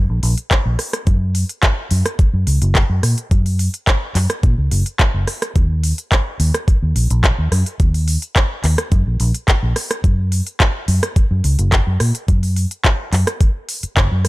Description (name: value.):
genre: nu-disco, nu disco.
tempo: 107 BPM.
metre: 4/4.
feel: straight.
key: Eb minor.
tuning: A4 = 442 Hz.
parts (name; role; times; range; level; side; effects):
vintage muted fingered electric bass; bass; 0.0-14.3 s; Gb1 to Bb2; -16 LUFS; equal; tube saturation.
pop drum kit; drums; 0.2-14.3 s; handclaps, hi-hat, rim click; -20 LUFS; equal; none.
electronic kick drum; drums; 0.5-14.1 s; none; -14 LUFS; equal; none.
room: little or no reverb.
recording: none.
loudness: -14 LUFS.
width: side -20 dB against mid.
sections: 0.0-14.3 A section.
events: none.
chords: none.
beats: 0.51 | 1.07 1.63 2.19 2.75 | 3.31 3.87 4.43 4.99 | 5.55 6.12 6.68 7.24 | 7.80 8.36 8.92 9.48 | 10.04 10.60 11.16 11.72 | 12.28 12.84 13.40 13.97.